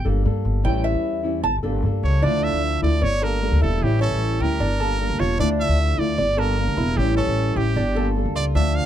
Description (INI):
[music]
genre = latin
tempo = 152 BPM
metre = 4/4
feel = straight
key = unclear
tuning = A4 = 441 Hz
[part]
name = flamenco guitar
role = accompaniment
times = 0.0-8.9 s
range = D3 to A4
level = -26 LUFS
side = left 2 dB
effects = none
[part]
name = Cuban tres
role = arpeggios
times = 0.0-8.9 s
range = C#4 to A5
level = -26 LUFS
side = right 2 dB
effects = none
[part]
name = upright bass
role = bass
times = 0.0-8.8 s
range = E1 to G2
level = -21 LUFS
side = equal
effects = none
[part]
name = brilliant trumpet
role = melody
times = 2.0-8.9 s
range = G4 to F5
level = -26 LUFS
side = right 4 dB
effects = none
[sound]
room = light reverb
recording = dark, warm production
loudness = -19 LUFS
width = side -11 dB against mid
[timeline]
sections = 0.0-2.2 A section; 2.2-8.9 B section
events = Cuban tres solo 0.0-2.2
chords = 0.0 Gmadd9; 0.6 A7; 1.4 Gmadd9; 2.2 Dmadd9; 3.0 Gmadd9; 3.8 A7; 4.6 Gmadd9; 5.4 Dmadd9; 6.2 Gmadd9; 7.0 A7; 7.8 Gmadd9